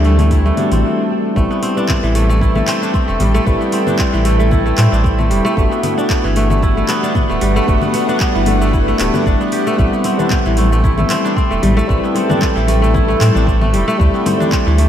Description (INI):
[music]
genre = organic downtempo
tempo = 114 BPM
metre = 4/4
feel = swing 54% on 16ths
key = A dorian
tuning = A4 = 441 Hz
[part]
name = tine electric piano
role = accompaniment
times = 0.0-14.9 s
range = G3 to B4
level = -20 LUFS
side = left 2 dB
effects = sidechain pumping, diffuse ambient delay
[part]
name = bowed-like drone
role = sustained chords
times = 0.0-14.9 s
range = G3 to G5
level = -22 LUFS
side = right 1 dB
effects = built-in reverb, sidechain pumping
[part]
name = kora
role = arpeggios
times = 0.0-14.9 s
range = E3 to G4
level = -18 LUFS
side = equal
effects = diffuse ambient delay
[part]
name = warm sub bass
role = bass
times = 0.0-14.9 s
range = D1 to A2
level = -15 LUFS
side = equal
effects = tube saturation, sidechain pumping
[part]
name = deep house drum kit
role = drums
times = 0.0-14.9 s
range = congas, handclaps, hi-hat, shaker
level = -24 LUFS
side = left 2 dB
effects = overdrive
[part]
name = congas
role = percussion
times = 0.1-0.8, 10.0-14.9 s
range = none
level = -24 LUFS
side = left 3 dB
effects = none
[part]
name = electronic kick drum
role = drums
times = 0.3-14.6 s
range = none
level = -17 LUFS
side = equal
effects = none
[sound]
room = moderate lush hall reverb, RT60 1.8 s, digital ambience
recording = dreamy mix soaked in reverb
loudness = -12 LUFS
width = side -10 dB against mid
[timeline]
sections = 0.0-1.4 A section; 1.4-14.9 B section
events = stop 0.8-1.4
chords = 0.0 D7sus4; 1.4 Am7; 5.6 Gmaj7; 9.8 Am7; 14.0 D7sus4